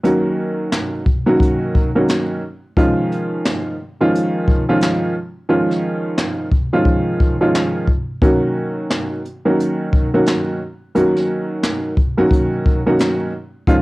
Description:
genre	hip hop, boom-bap hip-hop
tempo	88 BPM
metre	4/4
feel	swing 63% on 16ths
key	Eb minor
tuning	A4 = 440 Hz
part	warm upright piano	accompaniment	0.0-13.8 s	Eb3 to Gb4	-16 LUFS	equal	cassette tape
part	jazz brush drum kit	drums	0.0-13.8 s	handclaps, hi-hat, kick drum, snare drum	-18 LUFS	equal	cassette tape
room	light reverb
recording	home recording on cassette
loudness	-15 LUFS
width	side -20 dB against mid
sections	0.0-13.8 A section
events	hi-hats muted 5.5-8.2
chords	0.0 Ebm7; 2.8 Dbadd9; 8.2 Ebm7

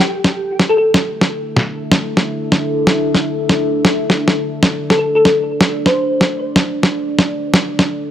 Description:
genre	half-time drum and bass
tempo	171 BPM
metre	4/4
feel	swing 56% on 16ths, half-time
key	unclear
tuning	A4 = 440 Hz
part	thumb-piano-like synth pluck	melody	0.0-0.8, 4.9-6.2 s	G4 to C5	-16 LUFS	left 1 dB	ensemble chorus, analog delay
part	deep dark ambient pad	sustained chords	0.1-8.1 s	D4 to E5	-20 LUFS	equal	chorus, built-in reverb, vintage 12-bit sampler grit
part	electronic snare drum	drums	0.2-7.9 s	none	-14 LUFS	equal	none
room	light reverb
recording	dry, gritty hardware recording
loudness	-13 LUFS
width	side -10 dB against mid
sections	0.0-8.1 A section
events	filter sweep on ambient pad 0.0-8.1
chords	0.0 Dsus2

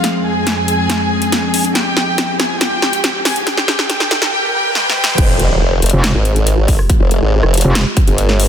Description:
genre	heavy wobble dubstep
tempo	140 BPM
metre	4/4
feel	half-time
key	F minor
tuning	A4 = 444 Hz
part	warm studio violin section	melody	0.0-5.2 s	F4 to Ab5	-18 LUFS	equal	vintage 12-bit sampler grit, digital delay
part	evolving wavetable pad	sustained chords	0.0-8.5 s	F2 to Ab4	-21 LUFS	left 1 dB	chorus, built-in reverb, sidechain pumping
part	big-room dance drum kit	drums	0.0-8.5 s	crash cymbal, hi-hat, rim click, snare drum	-17 LUFS	equal	none
part	riser and impact	sound effects	0.9-6.9 s	none	-23 LUFS	equal	none
part	formant-sweep wobble bass	bass	5.2-8.5 s	Eb1 to Ab1	-13 LUFS	equal	chorus, overdrive
part	electronic kick drum	drums	5.2-8.1 s	none	-13 LUFS	equal	none
part	metallic wobble bass	bass	5.9-7.8 s	F1	-12 LUFS	equal	chorus, overdrive
room	light reverb, digital ambience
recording	dense, heavily limited modern master, high-pass filter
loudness	-12 LUFS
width	side -9 dB against mid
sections	0.0-5.2 A section; 5.2-8.5 B section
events	build-up 0.0-5.2; drum fill 0.0-4.3, 4.8-5.2; filter sweep 0.0-5.2; riser 0.9-5.2; drop 5.2-8.5; impact 5.2-6.9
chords	0.0 Fmadd9

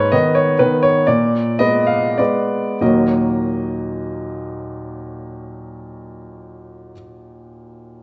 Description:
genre	classical, piano waltz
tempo	90-134 BPM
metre	3/4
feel	rubato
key	Eb minor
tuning	A4 = 440 Hz
part	clear baby grand piano	solo	0.0-8.0 s	Eb2 to F5	-19 LUFS	equal	none
room	wet recital hall reverb, RT60 1.7 s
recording	nothing above 7.9 kHz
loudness	-17 LUFS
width	mono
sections	0.0-2.8 A section; 2.8-6.4 B section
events	slowing down 0.0-2.8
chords	0.0 Abm; 1.1 Bb7b9; 2.8 Ebm

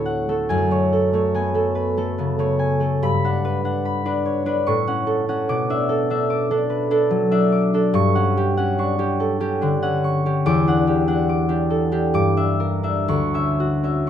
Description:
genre	classical, solo harp piece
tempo	72 BPM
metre	3/4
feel	rubato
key	unclear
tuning	A4 = 439 Hz
part	concert harp	solo	0.0-14.1 s	D2 to D6	-18 LUFS	equal	none
room	moderate studio reverb, RT60 0.7 s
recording	dark, warm production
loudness	-18 LUFS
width	side -9 dB against mid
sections	0.0-14.1 A section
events	none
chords	0.5 F#madd9; 3.0 Gmaj7; 4.7 A6; 5.5 Bm11; 8.0 G5; 10.5 Em9; 12.2 Gm6; 13.1 Dmaj9

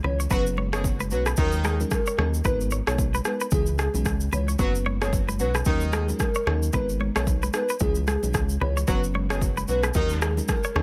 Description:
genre	afrobeats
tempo	112 BPM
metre	4/4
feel	swing 58% on 16ths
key	G# minor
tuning	A4 = 440 Hz
part	bell-like FM electric piano	accompaniment	0.0-10.8 s	E3 to B4	-36 LUFS	equal	chorus, tremolo
part	direct-recorded clean electric guitar	riff	0.0-10.8 s	G#4 to C#5	-34 LUFS	equal	subtle chorus
part	round analog bass	bass	0.0-10.8 s	F#1 to D#2	-28 LUFS	equal	none
part	congas	percussion	0.0-10.8 s	none	-38 LUFS	equal	none
part	hollow clarinet-like synth lead	melody	0.1-10.8 s	G#4 to C#5	-33 LUFS	equal	chorus, tremolo
part	afro-pop drum kit	drums	0.2-10.8 s	kick drum, rim click, shaker	-29 LUFS	equal	overdrive
part	warm horn section	second line	0.3-10.3 s	D#3 to G#4	-37 LUFS	equal	tape echo
room	little or no reverb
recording	none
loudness	-24 LUFS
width	mono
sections	0.0-10.8 A section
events	none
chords	0.3 F#sus4; 1.4 D#m7; 2.5 G#madd9; 3.5 C#m; 4.6 F#sus4; 5.7 D#m7; 6.7 G#madd9; 7.8 C#m; 8.9 F#sus4; 9.9 D#m7

